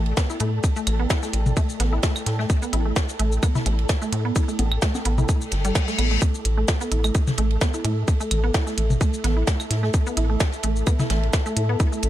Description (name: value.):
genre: minimal techno.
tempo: 129 BPM.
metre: 4/4.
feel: swing 54% on 16ths.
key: unclear.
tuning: A4 = 440 Hz.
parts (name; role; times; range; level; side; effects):
rubbery square bass; bass; 0.0-12.1 s; G1 to A2; -22 LUFS; equal; sidechain pumping.
flickering grainy texture; texture; 0.0-12.1 s; A4; -37 LUFS; equal; built-in reverb, sidechain pumping.
warbly tape-like pad; texture; 0.0-12.1 s; E4 to A5; -34 LUFS; left 1 dB; chorus, built-in reverb, sidechain pumping.
swinging big-band drum kit; drums; 0.1-12.1 s; ride cymbal, snare drum; -36 LUFS; right 2 dB; high-pass filter on cymbals, high-pass filter on snare, high-pass filter on room.
resonant blip pluck; riff; 0.2-12.0 s; G3 to E4; -29 LUFS; right 2 dB; chorus, sidechain pumping, digital delay.
electronic kick drum; drums; 0.2-11.9 s; none; -21 LUFS; equal; overdrive.
minimal click drum kit; drums; 0.2-12.1 s; hi-hat, shaker, snare drum; -28 LUFS; equal; overdrive.
electronic claves, toms and congas; percussion; 0.9-11.1 s; none; -26 LUFS; left 1 dB; overdrive, tape echo.
reverse cymbal; sound effects; 5.5-6.2 s; none; -27 LUFS; left 6 dB; none.
room: light reverb.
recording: dark, warm production.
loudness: -20 LUFS.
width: side -13 dB against mid.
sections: 0.0-12.1 A section.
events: fade-in on ambient pad 0.0-12.1; reverse cymbal 5.5-6.2.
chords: 0.0 A5.